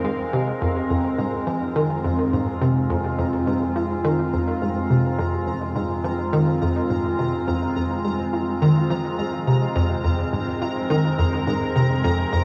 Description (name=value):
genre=ambient, sequencer-driven space music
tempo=105 BPM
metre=4/4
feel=straight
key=F minor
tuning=A4 = 440 Hz
part: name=evolving wavetable pad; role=sustained chords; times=0.0-12.4 s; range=Ab3 to Bb4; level=-27 LUFS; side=equal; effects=chorus, built-in reverb, shimmer reverb
part: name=plucky analog bass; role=riff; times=0.0-12.4 s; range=F2 to F3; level=-25 LUFS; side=equal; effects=lush chorus, tape echo
part: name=analog drone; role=bass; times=0.0-12.4 s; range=F2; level=-35 LUFS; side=equal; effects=chorus
part: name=pulsing gated texture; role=texture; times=0.0-12.4 s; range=F5 to Bb5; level=-37 LUFS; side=equal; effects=chorus, built-in reverb, shimmer reverb
room=wet huge ambient reverb, RT60 7.5 s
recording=worn, warbling old tape, cassette tape, warbly pitch drift, small room ambience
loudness=-22 LUFS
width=mono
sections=0.0-12.4 A section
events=none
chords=0.0 Fm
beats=0.04 | 0.61 1.19 1.76 2.33 | 2.90 3.47 4.04 4.61 | 5.18 5.76 6.33 6.90 | 7.47 8.04 8.61 9.19 | 9.76 10.33 10.90 11.47 | 12.04